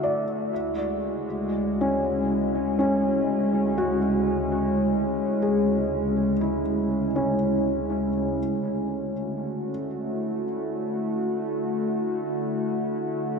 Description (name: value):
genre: ambient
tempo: 61 BPM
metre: 4/4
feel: straight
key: D lydian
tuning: A4 = 435 Hz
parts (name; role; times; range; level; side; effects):
- warbly tape-like pad; sustained chords; 0.0-13.4 s; D2 to F#4; -24 LUFS; equal; chorus, built-in reverb
- felt-muted upright piano; arpeggios; 0.0-9.7 s; C#4 to E5; -28 LUFS; left 1 dB; tape echo
room: wet cathedral reverb, RT60 6.0 s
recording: in a vast, echoing space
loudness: -23 LUFS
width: side -5 dB against mid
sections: 0.0-8.4 A section; 8.4-13.4 B section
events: none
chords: 0.0 Dadd9; 0.5 C#m/D; 8.4 Dadd9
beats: | 0.51 1.49 2.48 3.46 | 4.44 5.43 6.41 7.39 | 8.38 9.36 10.35 11.33 | 12.31 13.30